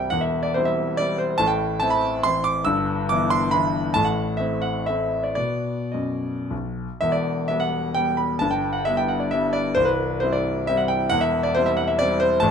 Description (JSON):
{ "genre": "classical, romantic triple-time dance for piano with dotted rhythms", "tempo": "96-151 BPM", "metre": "3/4", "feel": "rubato", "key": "E minor", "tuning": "A4 = 436 Hz", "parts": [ { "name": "warm grand piano", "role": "solo", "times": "0.0-12.5 s", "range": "C1 to E6", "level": "-20 LUFS", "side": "equal", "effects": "none" } ], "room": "moderate stone room reverb, RT60 1.1 s", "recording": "close, detailed microphones", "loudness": "-20 LUFS", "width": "side -7 dB against mid", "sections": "0.0-7.0 A section; 7.0-12.5 A section", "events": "none", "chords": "0.1 C/E; 1.4 Am; 2.7 Em/G; 4.0 Am; 5.4 B; 7.0 Em; 8.4 Em/G; 9.8 C; 11.1 C/E" }